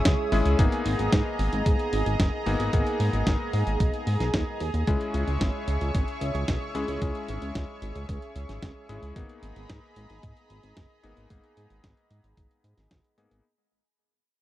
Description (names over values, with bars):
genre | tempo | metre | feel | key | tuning
italo disco | 112 BPM | 4/4 | straight | G# minor | A4 = 444 Hz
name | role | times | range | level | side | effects
lush unison pad | sustained chords | 0.0-13.4 s | G#4 to D#6 | -33 LUFS | right 2 dB | chorus
clear electric grand piano | stabs | 0.0-13.4 s | G#3 to G#4 | -32 LUFS | left 4 dB | low-pass filter, tape echo
chorused synth bass | bass | 0.1-13.4 s | F#1 to G#2 | -28 LUFS | equal | none
dusty soul sampler-style drum kit | drums | 0.1-13.4 s | hi-hat, snare drum | -30 LUFS | equal | none
electronic kick drum | drums | 0.1-13.0 s | none | -26 LUFS | equal | none
room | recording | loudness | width
little or no reverb | dry, close 1970s-style studio recording | -24 LUFS | side -14 dB against mid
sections
0.0-13.4 A section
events
fade-out 0.0-13.4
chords
0.0 C#m; 0.6 G#madd9; 4.9 C#m; 9.2 G#madd9